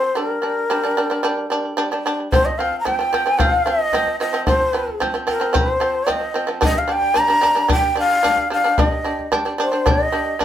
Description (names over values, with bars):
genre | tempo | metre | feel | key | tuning
mongolian traditional, Mongolian folk | 111 BPM | 4/4 | straight | unclear | A4 = 440 Hz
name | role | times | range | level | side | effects
breathy shakuhachi | melody | 0.0-10.4 s | Bb4 to Bb5 | -18 LUFS | left 1 dB | none
shamisen | arpeggios | 0.0-10.4 s | F3 to D4 | -21 LUFS | right 2 dB | slapback echo
frame drum | percussion | 2.3-10.4 s | none | -22 LUFS | left 2 dB | none
room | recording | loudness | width
wet small room reverb, RT60 0.5 s | band playing live in one room | -16 LUFS | side -10 dB against mid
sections
0.0-2.3 A section; 2.3-10.4 B section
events
none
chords
0.2 G5; 2.3 F5; 6.6 G5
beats
| 0.16 0.70 1.24 1.78 | 2.32 2.85 3.39 3.93 | 4.47 5.01 5.54 6.08 | 6.62 7.16 7.70 8.24 | 8.78 9.32 9.86 10.40